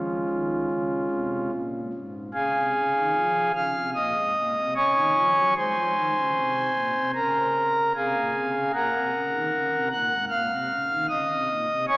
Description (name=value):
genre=classical, chorale-style piece for pipe organ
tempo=76 BPM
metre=4/4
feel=rubato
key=Db major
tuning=A4 = 440 Hz
part: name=pipe organ, principal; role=solo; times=0.0-12.0 s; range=Ab2 to Gb6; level=-22 LUFS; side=equal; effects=none
room=wet church reverb, RT60 3.1 s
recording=heard from further back in the room, small speaker sound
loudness=-22 LUFS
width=side -24 dB against mid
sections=0.0-2.4 A section; 2.4-12.0 B section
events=none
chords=0.0 Db; 5.6 Ab; 7.2 Db; 8.7 Gb